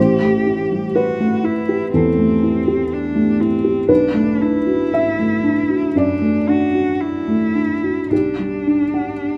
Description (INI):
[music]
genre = neoclassical piano and strings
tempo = 54-62 BPM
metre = 4/4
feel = rubato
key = unclear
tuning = A4 = 440 Hz
[part]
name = rich cello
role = second line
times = 0.0-9.4 s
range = C4 to G4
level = -25 LUFS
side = equal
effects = none
[part]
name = felt-muted upright piano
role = accompaniment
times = 0.0-9.4 s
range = A1 to F#5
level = -18 LUFS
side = equal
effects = none
[sound]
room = moderate plate reverb, RT60 3.5 s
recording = rough home demo mix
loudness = -17 LUFS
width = mono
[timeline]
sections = 0.0-9.4 A section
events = none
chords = 0.0 Am7; 3.9 Bm7; 8.1 Gmaj7/B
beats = 0.95 1.94 2.92 | 3.90 4.94 5.97 7.02 | 8.11 9.22